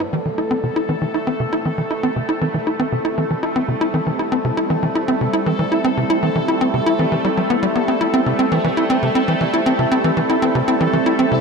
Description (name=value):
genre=ambient, sequencer-driven space music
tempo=118 BPM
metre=4/4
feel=straight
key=unclear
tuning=A4 = 440 Hz
part: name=phased analog pad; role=sustained chords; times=0.0-11.4 s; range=G3 to E4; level=-24 LUFS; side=right 1 dB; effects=phaser, chorus, shimmer reverb
part: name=tight sequencer bass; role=riff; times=0.0-11.4 s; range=C3 to E4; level=-18 LUFS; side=equal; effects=wide subtle chorus, shimmer reverb, analog delay
part: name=bubbling stepped-filter texture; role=texture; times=0.0-11.4 s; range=A3 to A4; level=-22 LUFS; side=equal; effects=chorus, built-in reverb, shimmer reverb
room=wet huge ambient reverb, RT60 8.1 s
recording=none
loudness=-16 LUFS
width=side -4 dB against mid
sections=0.0-11.4 A section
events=fade-in on analog synth pad 0.0-11.4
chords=0.0 C